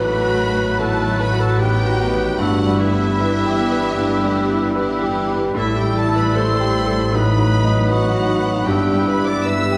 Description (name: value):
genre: classical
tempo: 76 BPM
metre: 4/4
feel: rubato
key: E minor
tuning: A4 = 439 Hz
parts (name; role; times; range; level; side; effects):
- clear concert grand piano; melody; 0.0-9.8 s; G2 to B4; -23 LUFS; equal; none
- warm studio violin section; melody; 0.0-9.8 s; E5 to E6; -30 LUFS; equal; none
- mellow hollow silver concert flute; second line; 0.0-9.8 s; D#6 to F#6; -30 LUFS; equal; none
- rich studio violin section; second line; 0.0-9.8 s; A3 to G4; -31 LUFS; equal; none
- warm clarinet; second line; 0.0-9.8 s; E4 to E5; -29 LUFS; equal; none
- warm oboe; second line; 0.0-9.8 s; A4 to B4; -32 LUFS; equal; none
- clear symphonic viola section; accompaniment; 0.0-9.8 s; D#3 to B3; -31 LUFS; equal; none
- warm bassoon; accompaniment; 0.0-9.8 s; F#3 to G3; -30 LUFS; equal; none
- mellow French horn section; sustained chords; 0.0-9.8 s; F#3 to E4; -30 LUFS; equal; none
- rich symphonic cello section; bass; 0.0-9.8 s; G2 to A2; -28 LUFS; equal; none
- rich symphonic double bass section; bass; 0.0-9.8 s; G1 to A1; -26 LUFS; equal; none
room: wet scoring stage reverb, RT60 1.6 s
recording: none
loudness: -18 LUFS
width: mono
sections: 0.0-9.8 A section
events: none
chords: 0.0 B7/A; 2.4 Em/G; 5.6 Am7; 7.1 B7/A; 8.7 Em/G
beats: 0.81 1.60 | 2.40 3.20 3.98 4.78 | 5.56 6.35 7.14 7.92 | 8.68 9.46